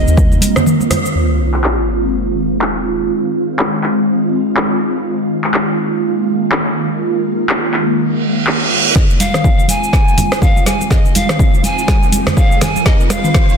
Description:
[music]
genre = afro house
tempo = 123 BPM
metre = 4/4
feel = swing 58% on 16ths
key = F minor pentatonic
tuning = A4 = 440 Hz
[part]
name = breathy pan flute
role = melody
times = 0.0-0.7, 9.0-13.6 s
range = Eb5 to Ab5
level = -20 LUFS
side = equal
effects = ping-pong delay
[part]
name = ethereal airy pad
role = sustained chords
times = 0.0-13.6 s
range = Eb3 to F4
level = -17 LUFS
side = right 1 dB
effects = ensemble chorus, built-in reverb, phaser, sidechain pumping
[part]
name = afro-pop drum kit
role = drums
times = 0.1-13.6 s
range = cabasa, handclaps, hi-hat, rim click, snare drum, toms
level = -18 LUFS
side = left 1 dB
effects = overdrive, low-pass filter on perc, low-pass filter on hats, low-pass filter on snare, low-pass filter on toms, low-pass filter on room
[part]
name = electronic kick drum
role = drums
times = 0.2-0.3, 9.0-13.5 s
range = none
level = -12 LUFS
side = equal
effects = overdrive
[part]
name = congas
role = percussion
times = 0.2-1.0, 9.0-13.5 s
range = none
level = -20 LUFS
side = right 3 dB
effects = none
[part]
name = sub drop, reverse cymbal and riser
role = sound effects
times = 1.1-3.1, 8.2-13.6 s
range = none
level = -20 LUFS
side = right 1 dB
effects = none
[sound]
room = moderate lush hall reverb, RT60 2.1 s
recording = dense, heavily limited modern master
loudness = -12 LUFS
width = side -6 dB against mid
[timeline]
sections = 0.0-1.2 A section; 1.2-9.0 B section; 9.0-13.6 C section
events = break 0.7-1.2; band accent 0.9; impact 1.2-3.1; reverse cymbal 8.2-9.0; build-up 9.0-13.6; drum fill 9.0-13.6; riser 9.0-13.6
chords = 0.0 Cm7; 1.2 Fm7

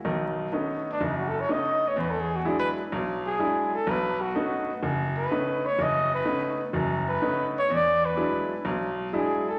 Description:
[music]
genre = jazz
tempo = 126 BPM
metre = 4/4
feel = swing 69% on 8ths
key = B mixolydian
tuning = A4 = 443 Hz
[part]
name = bright grand piano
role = accompaniment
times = 0.0-9.5 s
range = F#1 to E4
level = -30 LUFS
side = equal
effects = none
[part]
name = breathy trumpet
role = melody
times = 0.9-9.6 s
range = D4 to D#5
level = -29 LUFS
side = equal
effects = none
[sound]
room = wet large studio reverb, RT60 1.4 s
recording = vinyl crackle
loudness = -27 LUFS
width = mono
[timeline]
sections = 0.1-9.6 A section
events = trumpet solo 0.1-9.6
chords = 0.1 B9; 2.0 E9; 3.9 B9; 7.7 E9

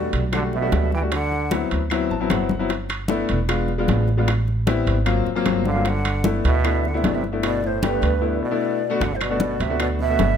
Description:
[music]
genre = Afro-Cuban jazz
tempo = 152 BPM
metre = 4/4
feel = straight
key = G major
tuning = A4 = 441 Hz
[part]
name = breathy mellow jazz flute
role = melody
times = 0.0-1.7, 5.7-10.4 s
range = B4 to G5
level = -26 LUFS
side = right 1 dB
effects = none
[part]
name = brilliant trombone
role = second line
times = 0.0-1.7, 5.7-10.4 s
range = G2 to E3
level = -28 LUFS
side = right 5 dB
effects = none
[part]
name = clear concert grand piano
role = accompaniment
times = 0.0-10.4 s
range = F#3 to A5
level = -24 LUFS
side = left 4 dB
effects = none
[part]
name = upright bass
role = bass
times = 0.0-10.4 s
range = E1 to D2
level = -23 LUFS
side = right 1 dB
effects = none
[part]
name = congas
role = percussion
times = 0.1-10.4 s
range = none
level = -28 LUFS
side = left 3 dB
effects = none
[part]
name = timbales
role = percussion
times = 0.1-10.4 s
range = none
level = -31 LUFS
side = right 7 dB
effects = none
[part]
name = bongos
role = percussion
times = 0.3-10.4 s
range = none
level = -32 LUFS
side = left 10 dB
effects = none
[part]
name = claves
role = percussion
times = 0.3-10.0 s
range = none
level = -34 LUFS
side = left 6 dB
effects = none
[sound]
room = light reverb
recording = close, detailed microphones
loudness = -19 LUFS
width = side -8 dB against mid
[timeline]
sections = 0.0-9.0 A section; 9.0-10.4 B section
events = grand piano fill 1.9-2.7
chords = 0.0 Em11; 1.1 D13; 2.7 G69; 3.5 E7b9; 4.3 Am9; 5.1 Ab13; 5.9 G6; 9.0 Gmaj9

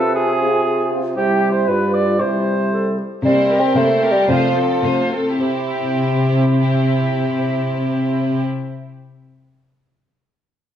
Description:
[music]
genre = quick classical-period movement for symphony orchestra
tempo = 105-119 BPM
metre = 2/4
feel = straight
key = C major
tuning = A4 = 444 Hz
[part]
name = dark cor anglais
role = second line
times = 0.0-3.0 s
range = G4 to D5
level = -21 LUFS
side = right 2 dB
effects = none
[part]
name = mellow clarinet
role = second line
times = 0.0-3.2 s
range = E4 to A4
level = -26 LUFS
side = equal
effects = none
[part]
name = mellow flute section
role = second line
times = 0.0-3.0 s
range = G4 to D5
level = -25 LUFS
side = right 1 dB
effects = none
[part]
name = mellow bassoon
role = accompaniment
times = 0.0-8.4 s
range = G2 to C4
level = -20 LUFS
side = right 1 dB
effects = none
[part]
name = mellow French horn section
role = sustained chords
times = 0.4-3.0 s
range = G3 to F4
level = -23 LUFS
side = equal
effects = none
[part]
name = warm studio violin section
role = melody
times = 3.2-8.4 s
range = G4 to C5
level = -28 LUFS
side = equal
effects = none
[part]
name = rich studio violin section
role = second line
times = 3.2-8.4 s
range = E4 to A4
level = -26 LUFS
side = left 2 dB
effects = none
[part]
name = warm studio cello section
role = bass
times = 3.2-8.4 s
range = C3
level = -20 LUFS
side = left 1 dB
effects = none
[part]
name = dark studio viola section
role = accompaniment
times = 3.3-8.4 s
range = A3 to C4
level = -22 LUFS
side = left 1 dB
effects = none
[sound]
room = wet stone room reverb, RT60 1.4 s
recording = worn, warbling old tape, cassette tape, warbly pitch drift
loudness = -15 LUFS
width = side -10 dB against mid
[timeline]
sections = 0.0-3.2 A section; 3.2-5.4 B section; 5.4-7.6 C section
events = slowing down 2.7-5.4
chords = 0.0 F5/C; 1.2 C; 1.7 G7; 2.2 C; 3.2 C7; 4.3 F/C; 5.4 C

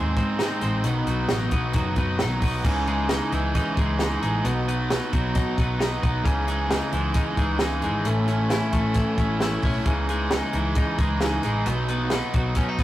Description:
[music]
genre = jangly indie pop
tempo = 133 BPM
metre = 4/4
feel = straight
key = C# minor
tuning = A4 = 440 Hz
[part]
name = overdriven electric guitar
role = accompaniment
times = 0.0-12.8 s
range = G#2 to E4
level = -27 LUFS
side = right 2 dB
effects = none
[part]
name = twelve-string electric guitar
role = arpeggios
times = 0.0-12.8 s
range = G#2 to E4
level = -27 LUFS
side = left 2 dB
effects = none
[part]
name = vintage muted fingered electric bass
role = bass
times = 0.0-12.8 s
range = F#1 to G#2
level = -28 LUFS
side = equal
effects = none
[part]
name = compact cocktail drum kit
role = drums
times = 0.2-12.8 s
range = crash cymbal, hi-hat, kick drum, snare drum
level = -25 LUFS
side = equal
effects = none
[sound]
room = moderate studio reverb, RT60 0.5 s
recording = rough rehearsal-room recording, warm saturation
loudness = -21 LUFS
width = side -14 dB against mid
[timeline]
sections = 0.0-2.6 A section; 2.6-12.8 B section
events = none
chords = 0.0 G#; 0.8 B; 2.6 C#madd9; 4.4 B; 6.3 C#madd9; 8.1 A; 9.9 C#madd9; 11.7 B

